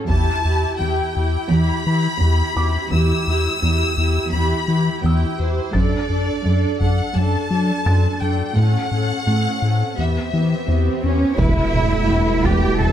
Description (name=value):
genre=cinematic, hybrid orchestral and electronic film score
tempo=85 BPM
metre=4/4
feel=straight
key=E minor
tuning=A4 = 436 Hz
part: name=rich symphonic viola section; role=accompaniment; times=0.0-12.9 s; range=G3 to A4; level=-25 LUFS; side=right 3 dB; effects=none
part: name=felt-muted upright piano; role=texture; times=0.0-12.9 s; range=G5 to A6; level=-34 LUFS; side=equal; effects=ping-pong delay
part: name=rich symphonic violin section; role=melody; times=0.1-12.9 s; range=B4 to E6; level=-25 LUFS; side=left 4 dB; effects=none
part: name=round analog bass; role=riff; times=0.1-12.9 s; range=E2 to F#3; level=-20 LUFS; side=left 2 dB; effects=none
part: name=warm symphonic cello section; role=bass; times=0.1-12.9 s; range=E2 to A4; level=-23 LUFS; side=right 2 dB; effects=none
part: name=taiko ensemble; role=drums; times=0.1-1.5, 5.7-7.1, 11.4-12.9 s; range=none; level=-25 LUFS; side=equal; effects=none
part: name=swell and sub drop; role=sound effects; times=9.7-12.9 s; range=none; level=-28 LUFS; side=right 1 dB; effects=none
part: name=dark symphonic violin section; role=second line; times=11.0-12.9 s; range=C#5 to A5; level=-29 LUFS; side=left 1 dB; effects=none
part: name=warm French horn section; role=sustained chords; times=11.4-12.9 s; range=B3 to E4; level=-27 LUFS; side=left 6 dB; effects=none
part: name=warm trombone section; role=sustained chords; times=11.4-12.9 s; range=B2 to G3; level=-27 LUFS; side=right 5 dB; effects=none
part: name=mellow tuba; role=bass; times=11.4-12.9 s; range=E1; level=-28 LUFS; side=right 4 dB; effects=none
part: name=rich symphonic double bass section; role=bass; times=11.4-12.9 s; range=E1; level=-26 LUFS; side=right 4 dB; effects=none
part: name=saturated sub bass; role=bass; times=11.4-12.9 s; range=E1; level=-25 LUFS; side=right 1 dB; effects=none
room=light reverb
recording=close, detailed microphones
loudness=-16 LUFS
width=side -10 dB against mid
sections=0.0-11.4 A section; 11.4-12.9 A section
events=swell 9.7-11.4; impact 11.4-12.9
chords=0.1 Em; 5.7 D/F#; 8.6 A; 10.0 Em